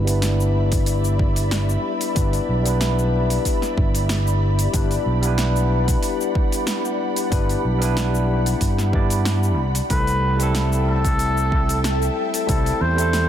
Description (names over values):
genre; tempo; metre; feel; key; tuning
sunset chillout; 93 BPM; 4/4; swing 54% on 16ths; G major; A4 = 440 Hz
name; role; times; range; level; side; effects
barky tine electric piano; accompaniment; 0.0-13.3 s; G3 to D5; -25 LUFS; moving between left 7 dB and right 4 dB; auto-pan, low-pass filter, digital delay
ethereal airy pad; sustained chords; 0.0-13.3 s; G4 to B5; -27 LUFS; left 1 dB; ensemble chorus, built-in reverb
fingered electric bass; bass; 0.0-13.3 s; G1 to G2; -20 LUFS; equal; none
deep house drum kit; drums; 0.1-13.3 s; cabasa, hi-hat, snare drum; -28 LUFS; equal; overdrive
electronic kick drum; drums; 0.7-12.6 s; none; -22 LUFS; equal; overdrive
trumpet with cup mute; melody; 9.9-13.3 s; A4 to C5; -24 LUFS; left 1 dB; ping-pong delay
room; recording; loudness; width
light reverb, digital ambience; dense, heavily limited modern master; -18 LUFS; side -10 dB against mid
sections
0.0-13.3 A section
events
filter sweep on tine electric piano 0.0-13.3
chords
0.0 G6; 9.6 C6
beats
0.23 0.88 1.52 | 2.17 2.81 3.46 4.10 | 4.75 5.39 6.04 6.68 | 7.33 7.97 8.62 9.26 | 9.91 10.55 11.20 11.84 | 12.49 13.13